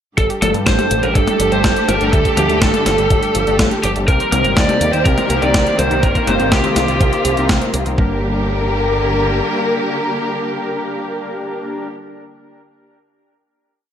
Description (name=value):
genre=italo disco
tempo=123 BPM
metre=4/4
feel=straight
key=G minor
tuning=A4 = 440 Hz
part: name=lead guitar through a small cranked amp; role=melody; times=0.2-7.5 s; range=G4 to D5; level=-18 LUFS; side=right 1 dB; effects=overdrive, digital delay
part: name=warm studio string section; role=sustained chords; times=0.2-11.9 s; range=D3 to Bb4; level=-20 LUFS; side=left 1 dB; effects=none
part: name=analog pluck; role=arpeggios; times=0.2-8.2 s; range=F3 to C5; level=-26 LUFS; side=right 4 dB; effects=none
part: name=picked electric bass with an envelope filter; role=bass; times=0.2-9.4 s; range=G1 to G2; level=-21 LUFS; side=equal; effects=none
part: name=clean 12-bit digital drum machine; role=drums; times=0.2-8.0 s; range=hi-hat, snare drum, toms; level=-20 LUFS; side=left 1 dB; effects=gated reverb
part: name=electronic kick drum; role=drums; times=0.2-8.1 s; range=none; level=-17 LUFS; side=equal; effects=none
part: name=analog synth brass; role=stabs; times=0.4-11.9 s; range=G2 to Bb4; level=-24 LUFS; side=left 2 dB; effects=chorus, vintage 12-bit sampler grit, digital delay
room=light reverb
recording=lossy compression artefacts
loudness=-13 LUFS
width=side -9 dB against mid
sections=0.2-8.0 verse; 8.0-11.9 final chord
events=filter sweep on analog polysynth 0.2-8.0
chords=0.2 Gsus2; 4.1 Cm7; 8.0 Gm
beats=| 0.18 0.67 1.15 1.64 | 2.13 2.62 3.10 3.59 | 4.08 4.57 5.05 5.54 | 6.03 6.52 7.01 7.49 | 7.98 8.47 8.96 9.45 | 9.93 10.42 10.91 11.40